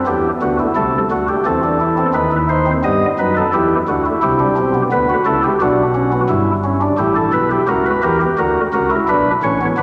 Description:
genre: classical, baroque-style 3-part fugue for pipe organ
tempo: 86 BPM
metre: 4/4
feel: straight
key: E minor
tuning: A4 = 440 Hz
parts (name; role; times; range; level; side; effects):
- chamber organ, flutes; solo; 0.0-9.8 s; F#1 to D#5; -16 LUFS; equal; none
room: wet church reverb, RT60 3.2 s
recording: none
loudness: -16 LUFS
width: mono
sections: 0.0-9.8 A section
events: none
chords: 0.0 Em; 0.8 Am/C; 2.1 B7/D#; 3.5 Em; 4.9 Bm; 6.3 Em/G; 7.7 F#7/C#; 9.1 Bm

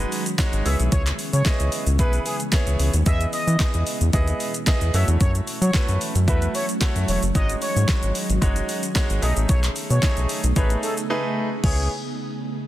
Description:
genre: dance-pop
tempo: 112 BPM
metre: 4/4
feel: straight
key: C# minor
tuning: A4 = 440 Hz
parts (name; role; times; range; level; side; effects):
- bright concert grand piano; accompaniment; 0.0-11.9 s; G#3 to E5; -29 LUFS; right 2 dB; sidechain pumping
- ethereal airy pad; sustained chords; 0.0-11.9 s; B2 to G#4; -31 LUFS; right 1 dB; ensemble chorus, built-in reverb, sidechain pumping
- round analog bass; bass; 0.0-11.9 s; E1 to F#3; -21 LUFS; equal; sidechain pumping
- pop drum kit; drums; 0.1-11.8 s; crash cymbal, handclaps, hi-hat, kick drum, shaker, snare drum; -23 LUFS; equal; overdrive
- expressive synth lead; melody; 0.7-11.9 s; G#4 to E5; -30 LUFS; equal; chorus, sidechain pumping, dub echo
room: digital ambience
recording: dense, heavily limited modern master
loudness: -19 LUFS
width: side -14 dB against mid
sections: 0.0-11.6 A section; 11.6-12.7 B section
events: drop 0.0-11.6; break 11.1-11.6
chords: 0.0 G#7sus4; 0.7 C#m7; 3.1 Emaj7; 4.9 F#m7; 7.3 G#7sus4; 9.2 B13; 11.6 C#m7

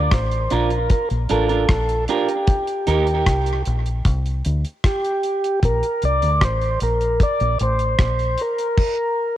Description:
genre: dub reggae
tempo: 76 BPM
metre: 4/4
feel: straight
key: Bb major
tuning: A4 = 440 Hz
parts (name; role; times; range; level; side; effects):
- mellow tonewheel organ; melody; 0.0-9.4 s; G4 to D5; -21 LUFS; equal; slow rotary speaker, cassette tape, tape echo
- deep dub fingered electric bass; bass; 0.0-8.3 s; A1 to Eb2; -21 LUFS; equal; none
- damped 70s drum kit; drums; 0.1-9.0 s; crash cymbal, hi-hat, kick drum, rim click; -20 LUFS; equal; cassette tape
- clean electric guitar; accompaniment; 0.5-3.1 s; D4 to Bb4; -24 LUFS; right 6 dB; spring reverb, cassette tape, tape echo
room: light reverb, studio ambience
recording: home recording on cassette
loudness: -17 LUFS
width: side -12 dB against mid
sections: 0.0-9.4 A section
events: none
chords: 0.0 Bb; 2.5 Eb; 5.6 Bb; 8.8 N.C.

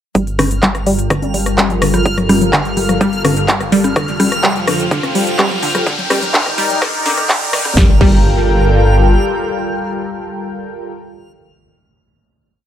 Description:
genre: progressive house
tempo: 126 BPM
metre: 4/4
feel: straight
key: G minor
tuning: A4 = 441 Hz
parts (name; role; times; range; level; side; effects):
- wide unison pluck; arpeggios; 0.1-8.1 s; D3 to G3; -18 LUFS; equal; vintage 12-bit sampler grit, sidechain pumping, dub echo
- lush unison pad; sustained chords; 0.8-10.9 s; Eb3 to G5; -19 LUFS; equal; chorus, phaser, sidechain pumping
- dark detuned saw bass; bass; 0.2-9.2 s; Eb1 to G1; -18 LUFS; equal; sidechain pumping
- big-room dance drum kit; drums; 0.2-8.2 s; crash cymbal, handclaps, hi-hat, rim click, snare drum; -18 LUFS; equal; overdrive, sidechain pumping on hats, sidechain pumping on cymbals
- electronic kick drum; drums; 0.2-8.2 s; none; -14 LUFS; equal; overdrive, high-pass filter on kick
- riser and impact; sound effects; 2.2-11.0 s; none; -24 LUFS; equal; none
- backwards swelling texture; texture; 0.2-7.8 s; F6; -26 LUFS; equal; built-in reverb, sidechain pumping
- electronic rim click and congas; percussion; 0.4-7.7 s; none; -19 LUFS; left 3 dB; sidechain pumping on snare, sidechain pumping on perc
room: moderate digital room reverb, RT60 0.9 s, digital ambience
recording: high-pass filter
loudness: -12 LUFS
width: side -10 dB against mid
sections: 0.2-7.8 build; 7.8-11.6 final chord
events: build-up 0.2-7.8; filter sweep on synth pluck 0.2-7.8; filter sweep on analog synth pad 0.2-7.8; filter sweep 0.2-7.8; riser 2.2-7.8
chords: 0.2 Gm7; 4.0 Fadd9; 5.9 Ebmaj9; 7.8 Gm7

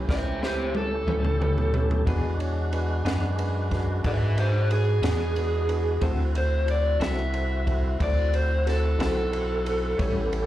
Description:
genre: slow blues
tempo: 61 BPM (dotted quarters)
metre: 12/8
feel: straight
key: unclear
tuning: A4 = 440 Hz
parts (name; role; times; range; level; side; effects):
- tonewheel organ; sustained chords; 0.0-10.5 s; G#3 to G4; -36 LUFS; left 1 dB; slow rotary speaker, overdrive, chorus vibrato
- rubbery square bass; bass; 0.0-10.5 s; A1 to G#2; -25 LUFS; equal; none
- raw garage guitar; melody; 0.1-10.5 s; G4 to E5; -28 LUFS; equal; overdrive, slapback echo
- clear upright piano; accompaniment; 0.1-10.5 s; C#4 to D5; -34 LUFS; right 4 dB; slapback echo
- compact cocktail drum kit; drums; 0.1-10.5 s; kick drum, ride cymbal, snare drum, toms; -31 LUFS; equal; none
- clean electric guitar; accompaniment; 1.1-10.2 s; A2 to A4; -34 LUFS; left 4 dB; tremolo, slapback echo
room: little or no reverb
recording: live gig heard through the venue's PA, club reverb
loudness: -22 LUFS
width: side -14 dB against mid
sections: 0.0-10.5 A section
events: overdriven electric guitar solo 0.0-10.5; drum fill 0.1-2.1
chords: 0.0 A7; 2.1 E7; 6.0 D7

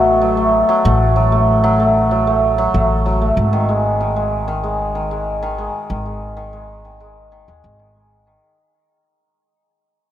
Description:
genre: folktronica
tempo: 95 BPM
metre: 4/4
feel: straight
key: unclear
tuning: A4 = 440 Hz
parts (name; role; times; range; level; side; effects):
- cimbalom; arpeggios; 0.0-8.5 s; D#3 to F#4; -15 LUFS; equal; analog delay
- upright bass; bass; 0.0-8.3 s; G#1 to D#2; -19 LUFS; equal; tube saturation
room: moderate huge ambient reverb, RT60 7.1 s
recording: dreamy mix soaked in reverb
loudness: -14 LUFS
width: side -11 dB against mid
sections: 0.0-8.4 A section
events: fade-out 1.7-8.4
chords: 0.0 F#m/A; 3.4 G#5

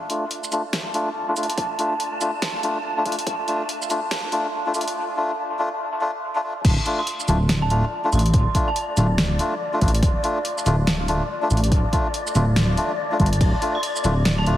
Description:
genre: deep dubstep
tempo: 142 BPM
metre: 4/4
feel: swing 62% on 16ths, half-time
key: D minor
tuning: A4 = 440 Hz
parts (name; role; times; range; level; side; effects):
- wind-like tuned noise texture; texture; 0.5-14.6 s; D5 to A5; -31 LUFS; left 1 dB; built-in reverb
- melodica; stabs; 0.1-14.6 s; A3 to F4; -24 LUFS; left 1 dB; low-pass filter, dub echo
- deep house drum kit; drums; 0.1-14.6 s; crash cymbal, hi-hat, ride cymbal, shaker, snare drum; -26 LUFS; equal; high-pass filter on hats, high-pass filter on perc, high-pass filter on snare, high-pass filter on cymbals, high-pass filter on room
- electronic kick drum; drums; 1.6-3.4, 6.6-13.5 s; none; -21 LUFS; equal; high-pass filter on kick, high-pass filter on room
- dark detuned saw bass; bass; 6.6-14.6 s; D1 to A1; -20 LUFS; equal; tube saturation
- dark detuned synth bell; melody; 7.0-9.3, 13.8-14.6 s; A5 to C6; -30 LUFS; right 2 dB; chorus, phaser, dub echo
room: moderate lush hall reverb, RT60 2.1 s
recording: heavily compressed radio sound, multiband compression, vinyl crackle, high-pass filter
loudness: -19 LUFS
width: side -13 dB against mid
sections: 0.0-6.6 A section; 6.6-14.6 B section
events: build-up 0.0-6.6; filter sweep on melodica 0.0-6.6; filter sweep 0.0-6.6; drop 6.6-14.6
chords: 0.0 Dm

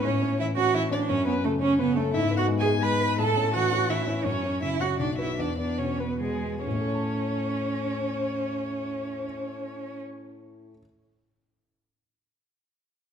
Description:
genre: quick classical-period movement for piano trio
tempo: 130-174 BPM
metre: 3/4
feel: rubato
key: A major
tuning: A4 = 440 Hz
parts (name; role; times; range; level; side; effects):
- warm violin; melody; 0.0-10.0 s; G#4 to B5; -32 LUFS; left 6 dB; none
- rich cello; second line; 0.0-10.0 s; G#3 to B4; -28 LUFS; right 5 dB; none
- dark grand piano; accompaniment; 0.0-10.8 s; B1 to A5; -28 LUFS; left 2 dB; none
room: wet recital hall reverb, RT60 1.8 s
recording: minimal, uncompressed stereo recording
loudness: -24 LUFS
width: side -8 dB against mid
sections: 0.0-6.6 A section; 6.6-9.2 B section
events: slowing down 3.7-6.6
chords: 0.0 A; 1.1 F#5; 2.1 G#m; 3.2 A; 4.2 F#5; 5.0 Bm; 5.4 E; 6.6 A

